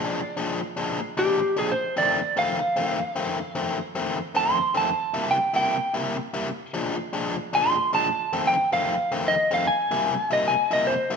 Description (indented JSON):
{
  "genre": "blues",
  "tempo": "151 BPM",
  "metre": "4/4",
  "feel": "swing 65% on 8ths",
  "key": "F mixolydian",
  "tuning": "A4 = 440 Hz",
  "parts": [
    { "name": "electric slide guitar", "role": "melody", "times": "0.0-11.1 s", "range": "G4 to C6", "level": "-22 LUFS", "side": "right 1 dB", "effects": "none" },
    { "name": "biting overdriven guitar", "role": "riff", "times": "0.0-11.2 s", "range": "F2 to E4", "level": "-27 LUFS", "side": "left 2 dB", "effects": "none" }
  ],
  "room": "wet stone room reverb, RT60 1.5 s",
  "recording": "band playing live in one room",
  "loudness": "-22 LUFS",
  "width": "side -6 dB against mid",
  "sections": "0.0-11.2 A section",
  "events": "electric slide guitar solo 0.0-11.2",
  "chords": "0.0 Bb7; 1.7 F7; 4.9 C7; 6.5 Bb7; 8.1 F7; 9.7 C7"
}